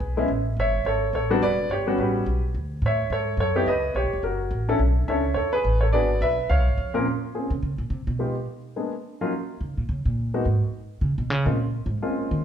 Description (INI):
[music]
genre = jazz piano trio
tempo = 212 BPM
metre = 4/4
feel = swing 60% on 8ths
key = Bb minor from 7.1 s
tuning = A4 = 440 Hz
[part]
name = warm baby grand piano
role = melody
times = 0.0-12.4 s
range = A#2 to E#5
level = -24 LUFS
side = equal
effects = none
[part]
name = upright bass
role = bass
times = 0.0-12.4 s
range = E1 to Eb3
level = -25 LUFS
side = equal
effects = none
[sound]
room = wet large studio reverb, RT60 1.1 s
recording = band playing live in one room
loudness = -22 LUFS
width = side -8 dB against mid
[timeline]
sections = 0.0-7.1 A section; 7.1-12.4 B section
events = upright bass solo 7.1-12.4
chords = 0.3 Amaj7; 1.4 Em7; 2.0 A13; 2.5 Dmaj9; 3.7 C#m7b5; 4.2 F#(#9); 4.8 B9sus4; 5.9 G#m7b5; 6.5 C#7; 7.1 Bbmadd9; 8.2 Fm7b5; 8.8 Bb7b9; 9.3 Eb7(no3) (rootless); 10.4 N.C.; 11.0 Db7(no3); 11.6 Ab69